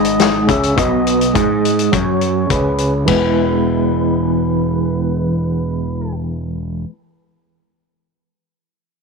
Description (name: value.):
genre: psychedelic rock.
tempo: 104 BPM.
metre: 4/4.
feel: straight.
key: E major.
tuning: A4 = 442 Hz.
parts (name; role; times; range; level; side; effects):
octave-fuzz lead guitar; melody; 0.0-6.1 s; B4 to E5; -24 LUFS; equal; distortion, low-pass filter, slapback echo.
twelve-string electric guitar; riff; 0.0-6.9 s; G#2 to E4; -16 LUFS; right 1 dB; tremolo, double-tracked left and right, low-pass filter.
growling picked electric bass; bass; 0.0-6.8 s; E1 to G#2; -22 LUFS; right 1 dB; overdrive.
vintage drum kit; drums; 0.0-3.2 s; hi-hat, kick drum, ride cymbal, snare drum; -20 LUFS; left 6 dB; none.
room: small room ambience.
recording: 1960s-style stereo.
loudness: -14 LUFS.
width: side -4 dB against mid.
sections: 0.0-3.1 A section; 3.1-5.4 B section.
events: filter sweep 0.0-3.1.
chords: 0.0 G#m; 3.1 E.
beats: 0.19 | 0.77 1.34 1.92 2.50 | 3.08 3.65 4.23 4.81.